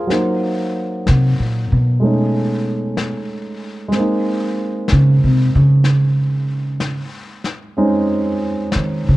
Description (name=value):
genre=jazz ballad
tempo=63 BPM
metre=4/4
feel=swing 66% on 8ths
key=Bb minor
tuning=A4 = 439 Hz
part: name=warm grand piano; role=accompaniment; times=0.0-9.2 s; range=Gb3 to C5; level=-20 LUFS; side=right 1 dB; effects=none
part: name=brushed snare drum and snare drum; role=drums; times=0.1-9.2 s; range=none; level=-28 LUFS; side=left 4 dB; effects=none
part: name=upright bass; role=bass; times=1.1-9.2 s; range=Bb2 to Eb3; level=-14 LUFS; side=equal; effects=none
room=light reverb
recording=dark, warm production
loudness=-14 LUFS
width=side -17 dB against mid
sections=0.0-9.2 A section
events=upright bass solo 0.0-9.2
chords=0.1 Cm7b5; 2.0 B13; 3.9 Bbm11